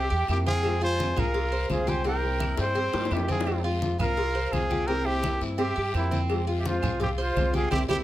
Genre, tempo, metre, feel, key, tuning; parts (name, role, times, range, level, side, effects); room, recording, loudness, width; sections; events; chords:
latin, Cuban son and guajira; 170 BPM; 4/4; straight; F minor; A4 = 440 Hz
breathy trumpet; melody; 0.0-8.0 s; E4 to C5; -30 LUFS; equal
breathy bright jazz flute; second line; 0.0-8.0 s; C5 to Ab5; -37 LUFS; right 2 dB
Cuban tres; arpeggios; 0.0-8.0 s; C4 to C5; -32 LUFS; right 3 dB
upright bass; bass; 0.0-8.0 s; C2 to G2; -29 LUFS; equal
congas; percussion; 0.1-8.0 s; -33 LUFS; left 1 dB
flamenco guitar; accompaniment; 0.3-8.0 s; C3 to F4; -33 LUFS; left 4 dB
claves; percussion; 0.3-8.0 s; -42 LUFS; right 6 dB
cowbell and bongos; percussion; 0.3-8.0 s; -34 LUFS; left 2 dB
guiro; percussion; 0.3-8.0 s; -44 LUFS; left 5 dB
light reverb; -24 LUFS; side -14 dB against mid
0.0-8.0 A section
drum fill 2.6-3.5; band accent 7.7-8.0
0.0 C7; 0.6 Fm; 2.1 C7; 3.5 Fm; 4.9 C7; 6.3 Fm